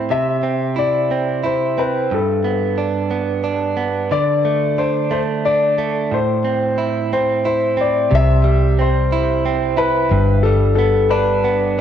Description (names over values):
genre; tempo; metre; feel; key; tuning
six-eight pop ballad; 60 BPM (dotted quarters); 6/8; straight; C major; A4 = 440 Hz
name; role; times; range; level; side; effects
direct-recorded clean electric guitar; accompaniment; 0.0-11.8 s; G2 to E4; -19 LUFS; right 6 dB; spring reverb, cassette tape
clear grand piano; melody; 0.1-11.8 s; A4 to E5; -19 LUFS; left 6 dB; cassette tape, tape echo
vintage muted fingered electric bass; bass; 8.1-11.8 s; G1 to C2; -17 LUFS; left 1 dB; none
room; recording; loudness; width
moderate lush hall reverb, RT60 2.5 s; home recording on cassette; -15 LUFS; side -9 dB against mid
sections
0.0-8.1 A section; 8.1-11.8 B section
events
none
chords
0.1 C; 2.1 G; 4.1 D5; 6.1 Am; 8.1 C; 10.1 G